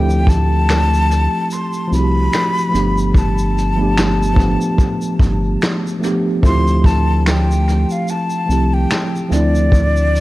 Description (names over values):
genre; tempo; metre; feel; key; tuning
lo-fi hip hop; 73 BPM; 4/4; swing 56% on 16ths; D dorian; A4 = 440 Hz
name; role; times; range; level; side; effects
breathy jazz flute; melody; 0.0-10.2 s; D5 to C6; -21 LUFS; left 3 dB; dub echo
mellow tine electric piano; accompaniment; 0.0-10.2 s; F3 to G4; -18 LUFS; right 1 dB; medium stereo tremolo, cassette tape, dub echo
round analog bass; bass; 0.0-10.2 s; G1 to D2; -16 LUFS; equal; none
vintage brush drum kit; drums; 0.1-10.2 s; finger snaps, hi-hat, kick drum, shaker, snare drum; -18 LUFS; equal; dub echo
room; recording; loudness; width
light reverb; echo-heavy mix, cassette tape; -13 LUFS; side -17 dB against mid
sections
0.0-10.2 A section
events
none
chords
0.0 Dm11; 2.7 G9; 6.4 Dm11; 9.3 Dm7